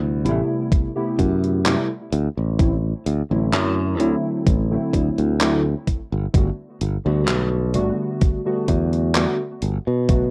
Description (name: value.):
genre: vaporwave.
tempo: 64 BPM.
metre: 4/4.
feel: straight.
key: unclear.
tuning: A4 = 440 Hz.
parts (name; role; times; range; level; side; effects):
warbly lo-fi synth keys; accompaniment; 0.0-10.2 s; C3 to G4; -25 LUFS; equal; analog chorus, tape echo.
modern bright fingered electric bass; bass; 0.0-10.3 s; G1 to B2; -23 LUFS; equal; none.
gated 80s digital drum machine; drums; 0.3-10.3 s; handclaps, hi-hat; -27 LUFS; equal; gated reverb, overdrive.
electronic kick drum; drums; 0.7-10.3 s; none; -21 LUFS; equal; overdrive.
room: light reverb.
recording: rough home demo mix, cassette tape.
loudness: -21 LUFS.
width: mono.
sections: 0.0-10.3 A section.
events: none.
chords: 0.0 Am7; 2.1 D7; 5.9 Gmaj9.